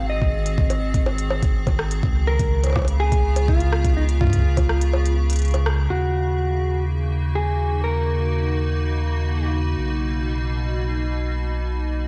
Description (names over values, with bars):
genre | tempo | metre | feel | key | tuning
IDM | 124 BPM | 4/4 | straight | Eb minor | A4 = 439 Hz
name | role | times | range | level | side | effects
mellow electric guitar | melody | 0.0-9.5 s | Eb4 to Eb5 | -29 LUFS | equal | vintage 12-bit sampler grit, cassette tape, analog delay
icy glass pad | sustained chords | 0.0-12.1 s | B2 to Ab4 | -30 LUFS | equal | chorus, built-in reverb, sidechain pumping, cassette tape
warm sub bass | bass | 0.0-12.1 s | Ab1 to Eb2 | -24 LUFS | equal | none
electronic kick drum | drums | 0.2-4.7 s | none | -23 LUFS | equal | small room ambience, cassette tape
organic electronic drum kit | drums | 0.5-5.8 s | bongos, hi-hat, rim click | -31 LUFS | equal | small room ambience, cassette tape
room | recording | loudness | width
digital ambience | home recording on cassette | -21 LUFS | mono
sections
0.0-5.9 A section; 5.9-12.1 B section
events
kick drops out 4.9-5.9; band accent 5.7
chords
0.0 Ab7; 2.0 Db7; 5.9 Ebm7; 9.8 Bmaj7